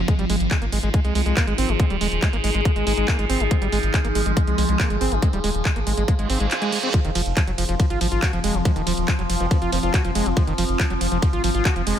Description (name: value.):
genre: psychedelic trance.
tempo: 140 BPM.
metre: 4/4.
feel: straight.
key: unclear.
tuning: A4 = 439 Hz.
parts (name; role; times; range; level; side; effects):
evolving wavetable pad; sustained chords; 0.0-12.0 s; F3; -28 LUFS; right 1 dB; phaser, built-in reverb, sidechain pumping.
round analog bass; bass; 0.0-11.9 s; Eb1 to C2; -24 LUFS; equal; none.
warbly tape-like pad; texture; 0.0-12.0 s; C4 to Ab5; -30 LUFS; left 1 dB; chorus, built-in reverb, phaser, sidechain pumping.
overdriven acid bass; riff; 0.1-12.0 s; Eb3 to Gb4; -27 LUFS; right 2 dB; auto-pan, sidechain pumping, digital delay.
electronic kick drum; drums; 0.1-11.7 s; none; -20 LUFS; equal; none.
garage drum kit; drums; 0.1-12.0 s; handclaps, hi-hat, ride cymbal; -28 LUFS; equal; none.
reverse cymbal; sound effects; 6.2-6.9 s; none; -28 LUFS; right 5 dB; none.
formant-sweep wobble bass; second line; 9.4-9.9 s; C4; -36 LUFS; left 4 dB; lush chorus, sidechain pumping, high-pass filter, ping-pong delay.
room: little or no reverb.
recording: none.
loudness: -18 LUFS.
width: side -10 dB against mid.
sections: 0.0-12.0 A section.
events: reverse cymbal 6.2-6.9.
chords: 0.1 Ab5; 6.9 F5.